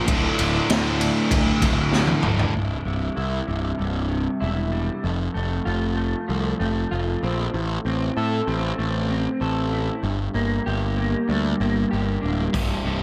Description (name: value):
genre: quiet-loud alternative rock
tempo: 96 BPM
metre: 4/4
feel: straight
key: C mixolydian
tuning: A4 = 441 Hz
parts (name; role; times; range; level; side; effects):
- cranked stack guitar; riff; 0.0-2.5, 12.5-13.0 s; C2 to D3; -28 LUFS; equal; overdrive
- fuzz guitar; riff; 0.0-2.5 s; D2 to D3; -27 LUFS; equal; distortion
- fuzz picked electric bass; bass; 0.1-13.0 s; C1 to A2; -27 LUFS; equal; overdrive
- raw garage drum kit; drums; 0.1-2.5, 12.5-12.7 s; hi-hat, kick drum, ride cymbal, snare drum, toms; -26 LUFS; equal; none
- electric guitar through a small old amp; arpeggios; 2.5-13.0 s; C2 to A4; -28 LUFS; equal; analog chorus
room: light reverb, small room ambience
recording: none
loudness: -23 LUFS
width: mono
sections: 0.0-2.5 A section; 2.5-13.0 B section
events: drum fill 1.9-2.5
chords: 0.1 D5; 2.5 C; 5.0 F; 7.5 Am; 10.0 Gm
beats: | 0.07 0.69 1.31 1.93 | 2.54 3.17 3.79 4.41 | 5.04 5.66 6.28 6.91 | 7.54 8.16 8.79 9.41 | 10.04 10.67 11.29 11.92 | 12.55